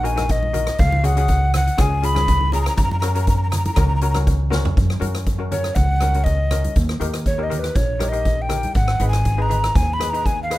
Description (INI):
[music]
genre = calypso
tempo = 120 BPM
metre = 4/4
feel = straight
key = F# major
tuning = A4 = 440 Hz
[part]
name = breathy mellow alto recorder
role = melody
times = 0.0-10.6 s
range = B4 to B5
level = -23 LUFS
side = equal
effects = plate reverb
[part]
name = steel pan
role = accompaniment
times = 0.0-10.6 s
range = C#4 to B4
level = -29 LUFS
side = left 4 dB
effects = plate reverb
[part]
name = upright bass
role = bass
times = 0.0-10.6 s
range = G#1 to F#2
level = -20 LUFS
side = equal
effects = none
[part]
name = street-band drum kit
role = drums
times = 0.0-10.6 s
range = hi-hat, kick drum, rim click, snare drum, toms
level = -22 LUFS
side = equal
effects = none
[part]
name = congas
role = percussion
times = 0.2-10.1 s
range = none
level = -31 LUFS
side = right 1 dB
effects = none
[sound]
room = light reverb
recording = rough home demo mix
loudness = -17 LUFS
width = side -16 dB against mid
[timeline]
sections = 0.0-4.8 A section; 4.8-10.6 B section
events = drum fill 4.5; recorder solo 4.8-10.6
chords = 0.0 D#m; 0.8 C#sus4; 1.8 C#7; 2.8 F#; 6.8 D#; 8.8 G#m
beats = 0.29 | 0.79 1.29 1.78 2.28 | 2.78 3.28 3.77 4.27 | 4.77 5.27 5.77 6.27 | 6.76 7.26 7.76 8.26 | 8.76 9.26 9.76 10.26